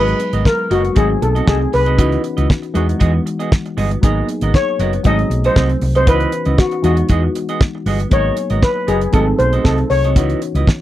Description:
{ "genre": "disco", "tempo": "117 BPM", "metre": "4/4", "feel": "straight", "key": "G# minor", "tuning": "A4 = 438 Hz", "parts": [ { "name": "steel pan", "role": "melody", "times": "0.0-10.4 s", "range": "F#4 to D#5", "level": "-18 LUFS", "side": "left 2 dB", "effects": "none" }, { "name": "barky reed electric piano", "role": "accompaniment", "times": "0.0-10.8 s", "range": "E3 to G#4", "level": "-23 LUFS", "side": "left 2 dB", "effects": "overdrive, phaser" }, { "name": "semi-hollow electric guitar", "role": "accompaniment", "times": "0.0-10.7 s", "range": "B3 to D#5", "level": "-23 LUFS", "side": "right 7 dB", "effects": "none" }, { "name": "hollow-body short-scale fingered electric bass", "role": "bass", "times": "0.0-10.6 s", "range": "F#1 to E2", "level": "-17 LUFS", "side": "equal", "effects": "none" }, { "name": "damped 70s drum kit", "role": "drums", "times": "0.1-10.8 s", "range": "hi-hat, kick drum, snare drum", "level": "-14 LUFS", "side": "equal", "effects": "none" } ], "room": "little or no reverb", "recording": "dry, close 1970s-style studio recording", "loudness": "-13 LUFS", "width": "side -14 dB against mid", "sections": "0.0-10.8 A section", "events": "none", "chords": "0.0 G#m9; 1.0 G#7b9; 2.0 C#m11; 2.8 Emaj9; 4.0 G#m9; 5.0 G#7b9; 6.1 C#m11; 6.8 Emaj9; 8.1 G#m9; 9.1 G#7b9; 10.2 C#m11" }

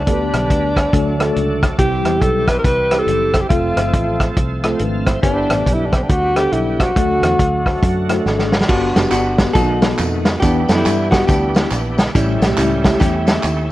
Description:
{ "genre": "uptempo gospel", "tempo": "139 BPM", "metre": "4/4", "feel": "swing 62% on 8ths", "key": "G major", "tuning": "A4 = 436 Hz", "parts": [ { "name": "breathy tenor saxophone", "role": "melody", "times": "0.0-8.3 s", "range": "C4 to B4", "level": "-18 LUFS", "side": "equal", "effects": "none" }, { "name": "bright tonewheel organ", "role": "sustained chords", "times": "0.0-13.7 s", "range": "C3 to A5", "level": "-25 LUFS", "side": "right 2 dB", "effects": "slow rotary speaker, overdrive, chorus vibrato" }, { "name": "fingered electric bass", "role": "bass", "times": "0.0-13.7 s", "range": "F1 to G2", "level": "-21 LUFS", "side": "equal", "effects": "none" }, { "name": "mellow tine electric piano", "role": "accompaniment", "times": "0.1-13.4 s", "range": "G2 to C5", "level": "-22 LUFS", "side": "left 1 dB", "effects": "medium stereo tremolo" }, { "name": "warm soul drum kit", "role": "drums", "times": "0.1-13.6 s", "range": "crash cymbal, hi-hat, kick drum, rim click, snare drum", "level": "-17 LUFS", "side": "equal", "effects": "none" }, { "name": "archtop guitar, miked and amplified", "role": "melody", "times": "8.7-13.7 s", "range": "G3 to A4", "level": "-19 LUFS", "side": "equal", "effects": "none" }, { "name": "tambourine and handclaps", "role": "percussion", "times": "8.7-13.6 s", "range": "none", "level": "-29 LUFS", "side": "right 2 dB", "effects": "none" } ], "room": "light reverb", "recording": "worn, warbling old tape, cassette tape, warbly pitch drift", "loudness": "-13 LUFS", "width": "side -16 dB against mid", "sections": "0.0-8.7 A section; 8.7-13.7 B section", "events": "drum fill 8.3-8.7", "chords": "0.1 G; 0.9 D; 1.8 C; 3.5 F; 5.2 G; 7.0 D; 8.7 Gmaj7; 9.6 B7; 10.4 Em7; 12.1 A7" }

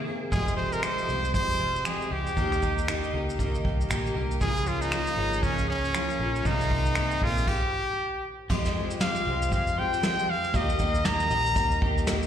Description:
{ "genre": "acoustic pop", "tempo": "117 BPM", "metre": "4/4", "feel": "swing 60% on 16ths", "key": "F minor", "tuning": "A4 = 436 Hz", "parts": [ { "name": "picked steel-string acoustic guitar", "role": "accompaniment", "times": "0.0-12.3 s", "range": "F2 to Ab4", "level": "-31 LUFS", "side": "equal", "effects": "double-tracked left and right, slapback echo" }, { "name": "brilliant trumpet", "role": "melody", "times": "0.3-12.1 s", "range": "Db4 to Bb5", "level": "-28 LUFS", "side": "left 1 dB", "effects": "slapback echo" }, { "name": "twelve-string electric guitar", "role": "arpeggios", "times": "0.3-12.3 s", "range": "Eb3 to Ab4", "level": "-38 LUFS", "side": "right 5 dB", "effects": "slapback echo, tape echo" }, { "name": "vintage muted fingered electric bass", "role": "bass", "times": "0.3-12.3 s", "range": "F1 to F2", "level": "-30 LUFS", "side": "equal", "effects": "none" }, { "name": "vintage brush drum kit", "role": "drums", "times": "0.3-12.3 s", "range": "crash cymbal, finger snaps, kick drum, shaker, snare drum", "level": "-30 LUFS", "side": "equal", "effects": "none" } ], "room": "light reverb, small room ambience", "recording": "live gig heard through the venue's PA, recital hall reverb", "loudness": "-24 LUFS", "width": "side -9 dB against mid", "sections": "0.0-8.5 A section; 8.5-12.3 B section", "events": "stop 7.5-8.5", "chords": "0.3 Fmadd9; 2.4 Eb; 4.4 Db6; 6.5 Abadd9/C; 7.5 N.C.; 8.5 Fmadd9; 10.5 Eb" }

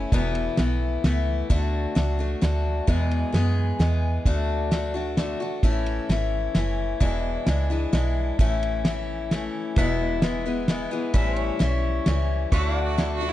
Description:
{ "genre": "honky-tonk and classic country", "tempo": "131 BPM", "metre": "3/4", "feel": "straight", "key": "A major", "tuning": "A4 = 440 Hz", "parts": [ { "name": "picked acoustic archtop guitar", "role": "accompaniment", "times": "0.0-13.3 s", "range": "E2 to G#4", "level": "-27 LUFS", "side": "left 4 dB", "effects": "none" }, { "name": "woody FM bass", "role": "bass", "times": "0.0-13.3 s", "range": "E1 to F#2", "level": "-25 LUFS", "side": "equal", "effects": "none" }, { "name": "cloth-damped thuddy drum kit", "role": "drums", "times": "0.1-13.1 s", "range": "kick drum, ride cymbal, snare drum", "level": "-25 LUFS", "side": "equal", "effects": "none" }, { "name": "pedal steel guitar", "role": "sustained chords", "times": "9.8-13.3 s", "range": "B4 to F#5", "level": "-32 LUFS", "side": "right 1 dB", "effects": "none" }, { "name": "clear fiddle", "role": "second line", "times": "12.5-13.3 s", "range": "E4 to F#4", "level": "-31 LUFS", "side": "right 7 dB", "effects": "none" } ], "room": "light reverb", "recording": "nothing above 11.0 kHz", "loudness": "-22 LUFS", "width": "side -14 dB against mid", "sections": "0.0-13.3 A section", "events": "none", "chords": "0.1 Esus4; 1.5 D; 2.9 E; 4.3 D; 5.6 A; 7.0 E7; 8.4 A; 9.8 E; 11.2 A7; 12.5 D" }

